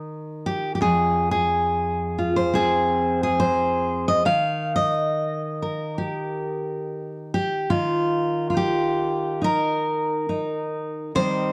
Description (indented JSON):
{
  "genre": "folk, solo fingerstyle acoustic guitar",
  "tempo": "70 BPM",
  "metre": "4/4",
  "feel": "swing 58% on 8ths",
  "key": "unclear",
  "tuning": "A4 = 437 Hz",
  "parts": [
    { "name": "fingerpicked steel-string acoustic guitar", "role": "solo", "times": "0.0-11.5 s", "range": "F2 to F5", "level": "-24 LUFS", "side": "equal", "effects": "none" }
  ],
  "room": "light reverb",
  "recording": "dark, warm production",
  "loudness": "-23 LUFS",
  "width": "mono",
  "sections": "0.0-7.7 A section; 7.7-11.5 B section",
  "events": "none",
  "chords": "0.0 Cm (rootless); 0.8 Fm; 4.3 Eb; 7.7 N.C."
}